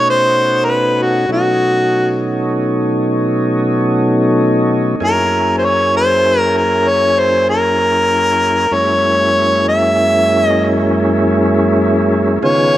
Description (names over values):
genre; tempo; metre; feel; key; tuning
blues; 65 BPM (dotted quarters); 12/8; straight; F# mixolydian; A4 = 440 Hz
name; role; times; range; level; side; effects
clear harmonica; melody; 0.0-12.8 s; F#4 to E5; -13 LUFS; equal; overdrive
tonewheel organ; sustained chords; 0.0-12.8 s; F#2 to G#4; -14 LUFS; equal; slow rotary speaker
room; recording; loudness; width
moderate lush hall reverb, RT60 2.2 s; rough home demo mix; -11 LUFS; side -13 dB against mid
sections
0.0-12.8 A section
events
none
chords
0.0 B9; 5.0 F#9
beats
0.38 | 1.30 2.22 3.15 4.07 | 5.00 5.92 6.85 7.78 | 8.71 9.63 10.56 11.49 | 12.42